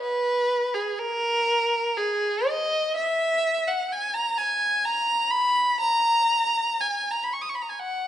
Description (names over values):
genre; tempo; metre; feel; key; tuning
classical, free, expressive piece for unaccompanied violin; 61 BPM; 3/4; rubato; unclear; A4 = 438 Hz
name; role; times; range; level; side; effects
warm violin; solo; 0.0-8.1 s; G#4 to D#6; -22 LUFS; equal; none
room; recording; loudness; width
moderate recital hall reverb, RT60 1.4 s; nothing above 10.6 kHz; -22 LUFS; side -11 dB against mid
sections
0.0-8.1 A section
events
none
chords
none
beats
| 0.02 1.00 1.98 | 2.96 3.92 4.84 | 5.80 6.80 7.79